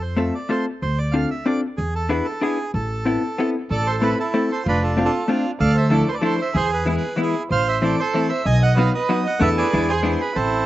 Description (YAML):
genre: musette waltz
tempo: 189 BPM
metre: 3/4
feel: straight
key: A harmonic minor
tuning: A4 = 440 Hz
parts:
  - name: bandoneon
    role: melody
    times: 0.0-10.7 s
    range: C4 to G#5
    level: -24 LUFS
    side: right 3 dB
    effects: slapback echo
  - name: upright bass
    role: bass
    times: 0.0-10.7 s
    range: F1 to F2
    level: -21 LUFS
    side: equal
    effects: none
  - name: vintage hollow-body jazz guitar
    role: accompaniment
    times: 0.2-10.2 s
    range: E3 to A4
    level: -22 LUFS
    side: left 2 dB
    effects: slapback echo
  - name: dark violin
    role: second line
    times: 3.7-10.7 s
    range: D4 to D#5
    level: -26 LUFS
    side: right 4 dB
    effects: slapback echo
room: little or no reverb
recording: recorded outdoors, with no room sound, nothing above 7.8 kHz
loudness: -18 LUFS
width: side -14 dB against mid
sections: 0.0-3.7 A section; 3.7-10.7 B section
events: none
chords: 0.0 F; 0.8 Dm7; 1.8 E7; 2.7 Amadd9; 3.7 Am; 4.7 F6; 5.6 Dmadd9; 6.5 E; 7.5 Am; 8.5 B; 9.4 E7sus4; 9.7 E7